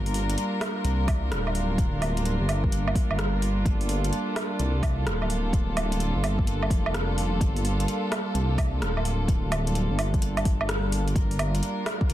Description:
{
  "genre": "future garage",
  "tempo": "128 BPM",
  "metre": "4/4",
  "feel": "swing 65% on 16ths",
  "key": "G minor",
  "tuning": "A4 = 440 Hz",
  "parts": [
    { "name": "warm chamber string section", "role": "sustained chords", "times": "0.0-12.1 s", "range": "G3 to Bb4", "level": "-30 LUFS", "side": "right 1 dB", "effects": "sidechain pumping" },
    { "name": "dark detuned saw bass", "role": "bass", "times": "0.0-12.1 s", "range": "D1 to C2", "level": "-26 LUFS", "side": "equal", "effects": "sidechain pumping" },
    { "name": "deep house drum kit", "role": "drums", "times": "0.1-12.1 s", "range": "hi-hat, rim click, woodblock", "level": "-32 LUFS", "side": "right 1 dB", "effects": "overdrive" },
    { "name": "electronic kick drum", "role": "drums", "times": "1.1-12.1 s", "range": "none", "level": "-25 LUFS", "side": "equal", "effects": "overdrive" }
  ],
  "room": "digital ambience",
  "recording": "dense, heavily limited modern master",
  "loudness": "-23 LUFS",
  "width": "side -13 dB against mid",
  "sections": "0.0-11.2 A section",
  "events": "band accent 10.7",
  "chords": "0.0 Gm7"
}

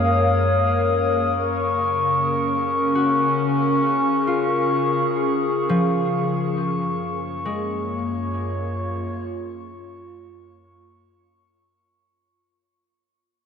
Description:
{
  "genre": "ambient",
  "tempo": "free time",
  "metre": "none",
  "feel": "none",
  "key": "unclear",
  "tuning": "A4 = 440 Hz",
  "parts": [
    { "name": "warbly tape-like pad", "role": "sustained chords", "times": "0.0-11.9 s", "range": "F#2 to E#5", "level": "-22 LUFS", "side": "left 1 dB", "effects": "chorus, built-in reverb, phaser, shimmer reverb" },
    { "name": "concert harp", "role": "arpeggios", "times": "0.0-11.4 s", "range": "E#3 to E#5", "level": "-27 LUFS", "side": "left 2 dB", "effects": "diffuse ambient delay, shimmer reverb" },
    { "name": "glass harmonica", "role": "texture", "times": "0.0-11.9 s", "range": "C#6 to D#6", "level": "-24 LUFS", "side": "left 1 dB", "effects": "shimmer reverb" }
  ],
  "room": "wet huge ambient reverb, RT60 9.3 s",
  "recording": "none",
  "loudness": "-19 LUFS",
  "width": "side -7 dB against mid",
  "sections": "0.0-11.9 A section",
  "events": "fade-in on harp 0.0-11.9; fade-out 4.8-11.9",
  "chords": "0.0 A#m/F#; 1.3 F#maj7; 6.6 A#m/F#"
}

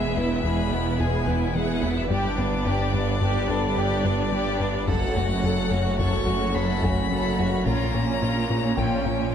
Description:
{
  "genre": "cinematic, hybrid orchestral and electronic film score",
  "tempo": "108 BPM",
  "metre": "5/4",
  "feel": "straight",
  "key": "unclear",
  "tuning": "A4 = 440 Hz",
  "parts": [
    { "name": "rich studio violin section", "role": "melody", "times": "0.0-9.3 s", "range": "A#4 to F#5", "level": "-36 LUFS", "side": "left 3 dB", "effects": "none" },
    { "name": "rich violin", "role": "melody", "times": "0.0-9.3 s", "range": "D5 to C#6", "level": "-31 LUFS", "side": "left 6 dB", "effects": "none" },
    { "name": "rich symphonic violin section", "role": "second line", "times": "0.0-9.3 s", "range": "C#4 to A4", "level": "-31 LUFS", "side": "equal", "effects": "none" },
    { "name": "rich symphonic viola section", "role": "accompaniment", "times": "0.0-9.3 s", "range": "F#3 to D4", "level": "-33 LUFS", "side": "right 1 dB", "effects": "none" },
    { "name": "hollow soft pad", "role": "sustained chords", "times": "0.0-9.3 s", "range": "G3 to C#5", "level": "-31 LUFS", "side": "equal", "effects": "chorus" },
    { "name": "tight sequenced synth", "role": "arpeggios", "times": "0.0-9.2 s", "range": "E3 to G4", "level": "-35 LUFS", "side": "left 1 dB", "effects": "none" },
    { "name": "rubbery square bass", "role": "riff", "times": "0.0-9.2 s", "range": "E2 to G3", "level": "-29 LUFS", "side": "left 2 dB", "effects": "none" },
    { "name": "clear symphonic double bass section", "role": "bass", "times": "0.0-9.3 s", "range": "E1 to A#1", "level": "-31 LUFS", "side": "right 4 dB", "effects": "none" },
    { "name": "phased detuned saw bass", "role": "bass", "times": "0.0-9.3 s", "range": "E1 to A#1", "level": "-32 LUFS", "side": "equal", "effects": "phaser" },
    { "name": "warm symphonic cello section", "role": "bass", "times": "0.0-9.3 s", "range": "E2 to A#2", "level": "-30 LUFS", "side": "right 3 dB", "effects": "none" },
    { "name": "taiko ensemble", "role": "drums", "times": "0.2-0.4, 4.9-9.3 s", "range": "none", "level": "-34 LUFS", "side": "equal", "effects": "none" },
    { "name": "dark grand piano", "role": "texture", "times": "3.5-9.3 s", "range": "A4 to A5", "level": "-37 LUFS", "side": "left 2 dB", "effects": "none" }
  ],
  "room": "wet scoring stage reverb, RT60 1.6 s",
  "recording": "none",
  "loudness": "-21 LUFS",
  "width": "side -8 dB against mid",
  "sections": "0.0-9.3 A section",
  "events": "none",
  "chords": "0.0 E; 2.1 G; 4.9 F#m; 7.7 A#m"
}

